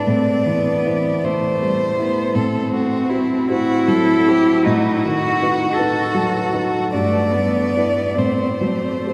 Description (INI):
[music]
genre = classical, slow romantic movement for piano trio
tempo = 53 BPM (dotted quarters)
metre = 6/8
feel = uneven beats, rubato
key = unclear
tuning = A4 = 439 Hz
[part]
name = rich violin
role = melody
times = 0.0-9.1 s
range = E4 to D5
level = -24 LUFS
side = equal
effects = none
[part]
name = rich cello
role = second line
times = 0.0-9.1 s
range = A3 to A4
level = -22 LUFS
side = equal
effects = none
[part]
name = dark concert grand piano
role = accompaniment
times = 0.0-9.1 s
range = G2 to C5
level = -24 LUFS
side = equal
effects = none
[sound]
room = wet cathedral reverb, RT60 5.5 s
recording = dark, warm production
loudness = -18 LUFS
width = mono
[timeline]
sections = 0.0-9.1 A section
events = none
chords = 0.1 Am7; 2.4 F#dim/A; 4.6 B7/A; 6.9 Em/G; 8.2 F#dim/A